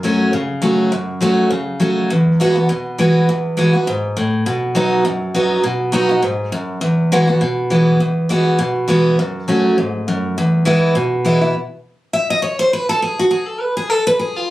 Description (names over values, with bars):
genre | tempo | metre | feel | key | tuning
bluegrass | 203 BPM | 4/4 | swing 56% on 8ths | E major | A4 = 440 Hz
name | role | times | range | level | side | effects
picked steel-string acoustic guitar | solo | 0.0-14.5 s | E2 to E5 | -14 LUFS | equal | none
room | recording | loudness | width
light reverb | recorded on a phone in the room, club ambience, compression | -14 LUFS | side -16 dB against mid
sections
0.0-11.5 A section; 11.5-14.5 B section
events
steel-string acoustic guitar solo 11.5-14.5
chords
0.0 F#m; 2.1 Eadd9; 4.5 B; 6.8 Eadd9; 9.2 F#m; 10.4 E; 11.5 N.C.